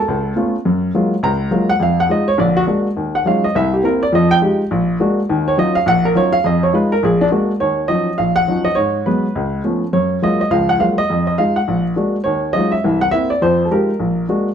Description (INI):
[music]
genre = jazz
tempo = 207 BPM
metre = 4/4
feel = swing 62% on 8ths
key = Eb minor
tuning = A4 = 437 Hz
[part]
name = warm baby grand piano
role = solo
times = 0.0-14.5 s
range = Bb1 to Bb5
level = -14 LUFS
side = equal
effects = none
[sound]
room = wet stone room reverb, RT60 0.9 s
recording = band playing live in one room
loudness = -14 LUFS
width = side -8 dB against mid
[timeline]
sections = 0.0-7.6 A section; 7.6-14.5 B section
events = grand piano solo 0.0-7.6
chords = 0.1 Dbaug7; 0.6 Gbmaj9; 1.8 Fm7; 2.4 Bbaug7; 3.0 Ebm11; 3.5 C7; 4.1 Fm9; 4.7 Bb7b13; 5.3 Ebm9; 6.4 Fm7b5; 7.0 Bbaug7; 7.6 Ebm9; 8.8 Abm7; 9.3 Dbaug7; 9.9 Gbmaj9; 11.1 Fm7; 11.7 Bbaug7; 12.2 Ebm11; 12.8 C7; 13.4 Fm9; 14.0 Bb7b13